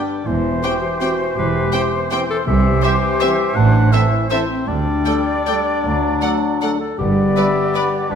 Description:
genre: classical, orchestral ballroom waltz.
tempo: 146-175 BPM.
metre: 3/4.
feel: rubato.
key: unclear.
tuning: A4 = 440 Hz.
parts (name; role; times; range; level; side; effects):
clear oboe; second line; 0.0-8.2 s; B4 to F#5; -26 LUFS; equal; none.
mellow clarinet; second line; 0.0-8.2 s; C4 to A4; -24 LUFS; left 3 dB; none.
silver concert flute; second line; 0.0-8.2 s; B4 to D5; -25 LUFS; left 3 dB; none.
warm bassoon; accompaniment; 0.0-8.2 s; E3 to B3; -27 LUFS; right 3 dB; none.
bright trombone section; sustained chords; 0.0-7.9 s; E3 to D4; -31 LUFS; right 3 dB; none.
warm French horn section; sustained chords; 0.0-8.2 s; C4 to A4; -25 LUFS; left 7 dB; none.
mellow trumpet; stabs; 0.0-7.9 s; G4 to B4; -28 LUFS; right 2 dB; none.
dark studio cello section; bass; 0.3-8.2 s; D2 to C3; -21 LUFS; right 3 dB; none.
dark symphonic double bass section; bass; 0.3-8.2 s; E1 to D2; -23 LUFS; right 3 dB; none.
warm symphonic violin section; melody; 0.6-7.8 s; D5 to G5; -27 LUFS; left 2 dB; none.
warm symphonic violin section; second line; 0.6-7.8 s; B4 to D5; -31 LUFS; left 6 dB; none.
dark symphonic viola section; accompaniment; 0.6-7.8 s; G3 to C4; -31 LUFS; right 3 dB; none.
timpani; percussion; 2.5-3.0, 7.0-7.5 s; G2 to C3; -24 LUFS; left 2 dB; none.
room: wet recital hall reverb, RT60 1.4 s.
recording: none.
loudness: -15 LUFS.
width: side -7 dB against mid.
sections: 0.0-8.2 A section.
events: none.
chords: 0.3 C/E; 2.5 C; 3.6 Am; 4.7 Dsus4; 5.8 D; 7.0 G.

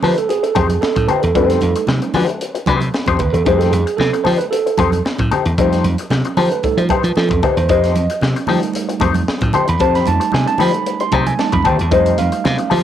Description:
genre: funk.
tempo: 114 BPM.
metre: 4/4.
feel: straight.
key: F mixolydian.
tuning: A4 = 440 Hz.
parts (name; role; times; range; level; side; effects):
mellow electric guitar; accompaniment; 0.0-12.8 s; A3 to C5; -19 LUFS; left 8 dB; wah, cassette tape.
tine electric piano; stabs; 0.0-12.8 s; G3 to C6; -19 LUFS; right 8 dB; fast stereo tremolo, cassette tape.
slap bass; bass; 0.0-12.8 s; Eb2 to F3; -17 LUFS; equal; none.
crisp fusion drum kit; drums; 0.0-12.8 s; hi-hat, kick drum, snare drum; -22 LUFS; equal; none.
congas; percussion; 0.0-12.8 s; none; -26 LUFS; right 6 dB; none.
room: light reverb, small room ambience.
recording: home recording on cassette.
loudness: -13 LUFS.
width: side -10 dB against mid.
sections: 0.0-12.8 A section.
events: tine electric piano solo 0.0-12.8.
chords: 0.0 F9.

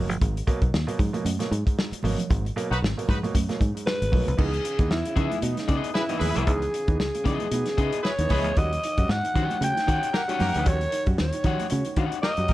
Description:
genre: funk.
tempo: 115 BPM.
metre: 4/4.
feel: swing 56% on 16ths.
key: unclear.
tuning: A4 = 440 Hz.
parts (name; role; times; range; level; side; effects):
warm upright piano; stabs; 0.0-12.5 s; G#2 to F#4; -33 LUFS; right 3 dB; none.
fingered electric bass; bass; 0.0-12.5 s; G1 to D#3; -27 LUFS; equal; none.
warm soul drum kit; drums; 0.1-12.5 s; crash cymbal, hi-hat, kick drum, snare drum; -27 LUFS; equal; none.
congas; percussion; 0.1-12.5 s; none; -34 LUFS; right 5 dB; none.
clear horn section; second line; 2.7-12.5 s; A#3 to B4; -32 LUFS; left 1 dB; none.
breathy alto saxophone; melody; 3.9-12.5 s; D#4 to G5; -28 LUFS; equal; none.
electric guitar at the edge of break-up; accompaniment; 5.2-12.2 s; B3 to G5; -33 LUFS; left 8 dB; none.
room: small room reverb.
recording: none.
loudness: -22 LUFS.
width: side -16 dB against mid.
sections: 0.0-4.4 A section; 4.4-12.5 B section.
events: band accent 2.3-4.4.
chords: 0.0 G#m9; 4.4 C#m9; 8.6 D#7#9.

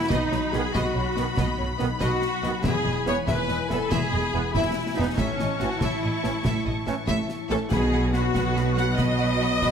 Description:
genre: cinematic, heroic adventure film score.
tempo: 95 BPM (dotted quarters).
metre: 12/8.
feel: straight.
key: unclear.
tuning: A4 = 440 Hz.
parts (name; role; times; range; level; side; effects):
rich symphonic violin section; melody; 0.0-9.7 s; B5 to C#6; -35 LUFS; left 2 dB; none.
warm symphonic violin section; second line; 0.0-9.7 s; C#5 to B5; -33 LUFS; left 3 dB; none.
rich symphonic viola section; accompaniment; 0.0-9.7 s; C#4 to F#5; -27 LUFS; equal; none.
concert harp; arpeggios; 0.0-9.7 s; A2 to C#5; -32 LUFS; left 11 dB; none.
rich symphonic cello section; bass; 0.1-9.7 s; E2 to B2; -30 LUFS; right 2 dB; none.
warm symphonic double bass section; bass; 0.1-9.7 s; E1 to B1; -30 LUFS; right 2 dB; none.
concert snare drum, concert bass drum and clash cymbals; drums; 0.1-9.7 s; none; -31 LUFS; equal; none.
clear trombone section; sustained chords; 0.5-9.7 s; D#3 to C#4; -32 LUFS; right 3 dB; none.
timpani; percussion; 7.7-8.3 s; B2; -32 LUFS; equal; none.
room: moderate scoring stage reverb, RT60 1.6 s.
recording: none.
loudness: -22 LUFS.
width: side -7 dB against mid.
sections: 0.0-9.7 A section.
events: none.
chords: 0.1 B; 2.6 E; 5.2 A; 7.7 B.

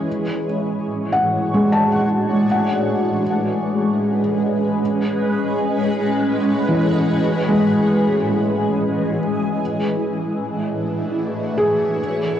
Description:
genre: ambient.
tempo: free time.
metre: none.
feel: none.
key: unclear.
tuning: A4 = 440 Hz.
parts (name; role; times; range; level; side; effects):
shimmering ambient pad; sustained chords; 0.0-12.4 s; A2 to C#5; -19 LUFS; equal; chorus, built-in reverb, phaser, cassette tape.
felt-muted upright piano; arpeggios; 0.0-12.4 s; E3 to A5; -20 LUFS; equal; cassette tape, analog delay.
room: wet booth ambience, RT60 0.2 s.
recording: home recording on cassette.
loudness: -17 LUFS.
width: side -10 dB against mid.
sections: 0.0-12.4 A section.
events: none.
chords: 0.1 Dmaj9#11/A; 2.4 Amaj9; 4.8 B9sus4/A; 7.2 E6; 9.6 Dmaj9#11/A.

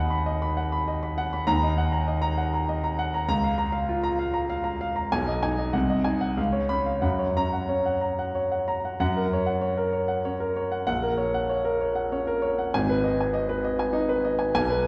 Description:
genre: classical, virtuoso piano study.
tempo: 98 BPM.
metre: 3/4.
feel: rubato.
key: F# major.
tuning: A4 = 439 Hz.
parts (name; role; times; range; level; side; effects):
warm concert grand piano; solo; 0.0-14.9 s; G#1 to B5; -26 LUFS; equal; none.
room: wet recital hall reverb, RT60 1.7 s.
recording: recorded in a church or concert hall.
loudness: -26 LUFS.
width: mono.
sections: 0.0-9.0 A section; 9.0-14.9 B section.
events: none.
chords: 0.0 B/D#; 1.5 D#m; 3.3 A#m/C#; 5.1 G#m/B; 5.7 G#7/B#; 6.4 C#7; 7.0 F#; 10.9 F#/A#; 12.7 G#m.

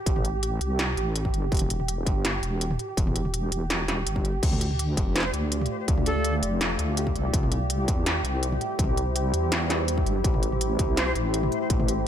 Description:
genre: half-time drum and bass.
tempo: 165 BPM.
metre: 4/4.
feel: half-time.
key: D minor.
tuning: A4 = 435 Hz.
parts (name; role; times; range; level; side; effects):
pulsing gated texture; texture; 0.0-12.1 s; G4; -33 LUFS; right 2 dB; chorus, built-in reverb.
deep soft wobble bass; bass; 0.1-12.1 s; E1 to E2; -27 LUFS; equal; chorus.
electronic kick drum; drums; 0.1-11.8 s; none; -26 LUFS; equal; distortion.
industrial drum kit; drums; 0.1-12.0 s; crash cymbal, hi-hat, snare drum, toms; -29 LUFS; equal; none.
deep dark ambient pad; sustained chords; 5.3-12.1 s; G3 to D5; -31 LUFS; left 1 dB; chorus, built-in reverb, sidechain pumping.
breathy bright jazz flute; melody; 5.2-6.3, 11.0-11.1 s; A4 to C5; -33 LUFS; equal; ping-pong delay.
room: light reverb.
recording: none.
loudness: -23 LUFS.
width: side -9 dB against mid.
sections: 0.0-12.1 A section.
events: none.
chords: 0.0 Am; 1.5 Em; 4.4 Dm; 7.3 C; 10.2 Am.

